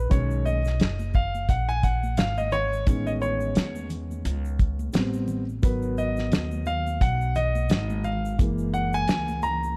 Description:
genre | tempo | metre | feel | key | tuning
hip hop, jazz-hop | 87 BPM | 4/4 | swing 57% on 16ths | unclear | A4 = 440 Hz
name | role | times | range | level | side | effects
dark grand piano | accompaniment | 0.0-9.8 s | D#3 to A#5 | -30 LUFS | equal | none
upright bass | bass | 0.0-9.7 s | F#1 to E2 | -30 LUFS | equal | none
cloth-damped thuddy drum kit | drums | 0.1-9.6 s | hi-hat, kick drum, shaker, snare drum | -25 LUFS | equal | vintage 12-bit sampler grit
tube shaker and congas | percussion | 0.1-9.8 s | none | -43 LUFS | equal | none
room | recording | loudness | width
studio ambience | none | -25 LUFS | mono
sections
0.0-9.8 A section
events
grand piano solo 0.0-9.8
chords
0.1 B69; 2.9 Amaj9#11; 4.9 Am9; 5.6 G#m9; 8.4 F#7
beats
| 0.11 0.80 1.49 2.18 | 2.87 3.56 4.25 4.94 | 5.63 6.32 7.01 7.70 | 8.39 9.08 9.77

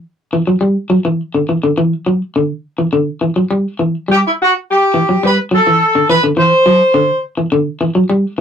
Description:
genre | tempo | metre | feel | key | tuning
afrobeat | 104 BPM | 4/4 | straight | unclear | A4 = 440 Hz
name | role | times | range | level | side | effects
electric guitar at the edge of break-up | arpeggios | 0.3-8.4 s | D3 to G3 | -13 LUFS | left 1 dB | none
warm horn section | melody | 4.1-7.2 s | E4 to C5 | -11 LUFS | equal | none
room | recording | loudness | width
wet booth ambience, RT60 0.2 s | rough rehearsal-room recording, warm saturation | -12 LUFS | side -8 dB against mid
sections
0.0-8.4 A section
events
none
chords
0.0 Dadd9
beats
0.05 0.62 1.20 | 1.77 2.35 2.93 3.50 | 4.08 4.65 5.23 5.80 | 6.38 6.95 7.53 8.10

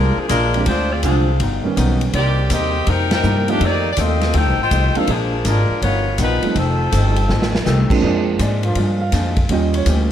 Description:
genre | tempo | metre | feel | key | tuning
jazz, big band swing | 163 BPM | 4/4 | swing 66% on 8ths | Bb mixolydian | A4 = 440 Hz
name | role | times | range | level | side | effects
mellow saxophone section | melody | 0.0-7.6 s | F3 to G5 | -20 LUFS | left 2 dB | plate reverb
archtop guitar, miked and amplified | accompaniment | 0.0-10.1 s | F2 to G4 | -26 LUFS | left 4 dB | none
warm grand piano | accompaniment | 0.0-10.1 s | D#3 to F5 | -21 LUFS | right 5 dB | none
upright bass | bass | 0.0-10.1 s | F1 to Ab2 | -18 LUFS | equal | none
swinging big-band drum kit | drums | 0.3-10.0 s | crash cymbal, hi-hat, kick drum, ride cymbal, snare drum | -23 LUFS | equal | none
clear trombone section | sustained chords | 8.0-9.1 s | F3 to Ab4 | -26 LUFS | right 1 dB | none
room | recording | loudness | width
light reverb | close, detailed microphones | -15 LUFS | side -10 dB against mid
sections
0.0-8.0 A section; 8.0-10.1 B section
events
band accent 3.1; drum fill 7.3-7.7; grand piano solo 8.0-10.1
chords
0.0 Bb7; 0.7 Dm7b5; 1.4 G7alt; 2.1 Cm7; 3.6 F7; 5.1 Bb7; 5.8 G7alt; 6.6 F7; 8.0 Bb7; 9.5 Eb7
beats
0.30 | 0.67 1.04 1.40 1.77 | 2.14 2.51 2.87 3.24 | 3.61 3.98 4.34 4.71 | 5.08 5.45 5.82 6.18 | 6.55 6.92 7.29 7.66 | 8.02 8.39 8.76 9.13 | 9.49 9.86

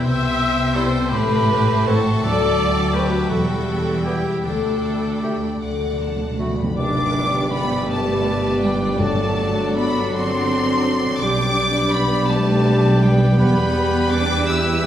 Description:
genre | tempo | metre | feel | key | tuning
classical, slow romantic movement for symphony orchestra | 50-58 BPM (dotted quarters) | 6/8 | rubato | G major | A4 = 440 Hz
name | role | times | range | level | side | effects
warm symphonic violin section | melody | 0.0-14.9 s | G5 to E6 | -28 LUFS | left 2 dB | none
bright oboe | second line | 0.0-14.9 s | D4 to D5 | -29 LUFS | equal | none
rich chamber violin section | second line | 0.0-14.9 s | A4 to A5 | -32 LUFS | left 1 dB | none
silver concert flute | second line | 0.0-14.9 s | G5 to E6 | -28 LUFS | equal | none
rich symphonic viola section | accompaniment | 0.0-14.9 s | B3 to E5 | -27 LUFS | right 1 dB | none
mellow French horn section | sustained chords | 0.0-14.9 s | F#3 to D4 | -25 LUFS | left 2 dB | none
concert harp | arpeggios | 0.0-14.9 s | G2 to G4 | -28 LUFS | left 5 dB | none
rich chamber double bass section | bass | 0.0-14.9 s | E1 to E2 | -23 LUFS | right 1 dB | none
rich symphonic cello section | bass | 0.1-14.9 s | D2 to E4 | -25 LUFS | right 1 dB | none
clear clarinet | second line | 0.8-14.9 s | E4 to B4 | -29 LUFS | left 1 dB | none
mellow bassoon | accompaniment | 0.8-14.9 s | F#3 to C4 | -30 LUFS | right 2 dB | none
timpani | percussion | 2.3-10.1 s | G2 to D3 | -29 LUFS | equal | none
tam-tam | percussion | 6.8-9.7 s | none | -32 LUFS | left 1 dB | none
room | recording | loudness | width
wet recital hall reverb, RT60 1.4 s | heard from further back in the room | -17 LUFS | side -10 dB against mid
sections
0.0-6.8 A section; 6.8-14.9 B section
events
timpani fill 5.6-6.8; band accent 6.8-7.5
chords
0.1 C; 1.1 Am; 2.3 D7; 3.3 Em; 4.5 Dsus4; 5.6 D; 6.8 G; 9.0 D7/G; 11.2 G/B; 13.4 Em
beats
| 0.06 1.12 | 2.25 3.33 | 4.46 5.63 | 6.78 7.88 | 9.01 10.14 | 11.23 12.31 | 13.40 14.48

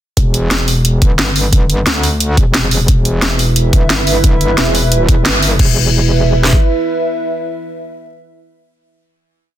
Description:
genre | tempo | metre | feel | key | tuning
dark technical drum and bass | 177 BPM | 4/4 | straight | E minor | A4 = 440 Hz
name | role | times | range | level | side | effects
metallic wobble bass | bass | 0.2-6.6 s | E1 to D2 | -14 LUFS | equal | chorus, tube saturation, sidechain pumping
drum and bass drum kit | drums | 0.2-6.6 s | kick drum, snare drum | -11 LUFS | equal | overdrive
drum and bass drum kit | drums | 0.2-5.7 s | crash cymbal, hi-hat, snare drum | -15 LUFS | equal | overdrive
dark analog pad | sustained chords | 2.9-9.0 s | E4 to E5 | -18 LUFS | right 2 dB | chorus, sidechain pumping
room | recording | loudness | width
little or no reverb | dense, heavily limited modern master | -10 LUFS | side -12 dB against mid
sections
0.2-5.6 drop; 5.6-8.3 final chord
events
drop 0.2-5.6; band accent 5.3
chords
0.2 E5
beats
| 0.17 0.51 0.85 1.19 | 1.53 1.87 2.21 2.54 | 2.88 3.22 3.56 3.90 | 4.24 4.58 4.92 5.25 | 5.59 5.93 6.27 6.61 | 6.95 7.29 7.63 7.97

